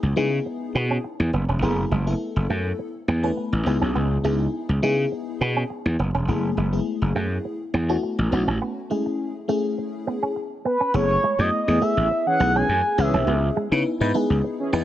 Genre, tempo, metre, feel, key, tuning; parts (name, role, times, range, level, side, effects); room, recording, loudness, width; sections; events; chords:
funk; 103 BPM; 4/4; straight; A4 = 438 Hz
gritty slap bass; bass; 0.0-14.8 s; E1 to C#3; -22 LUFS; equal; overdrive
FM electric piano with soft pad layer; accompaniment; 0.2-14.8 s; G#3 to B4; -26 LUFS; left 3 dB; chorus, phaser
electric guitar with an envelope filter; riff; 0.2-14.8 s; G#3 to C#4; -30 LUFS; right 5 dB; wide subtle chorus
expressive synth lead; melody; 10.7-13.6 s; B4 to G#5; -22 LUFS; right 1 dB; chorus
mellow synth brass; second line; 12.3-14.7 s; E3 to G#4; -29 LUFS; right 2 dB; chorus
light reverb; -20 LUFS; side -12 dB against mid
0.0-10.9 A section; 10.9-14.8 B section
break 8.6-10.9
0.0 C#m7; 1.6 F#m11; 3.7 C#m7; 6.3 F#m11; 8.3 B7sus4; 10.9 F#m11; 13.0 C#m7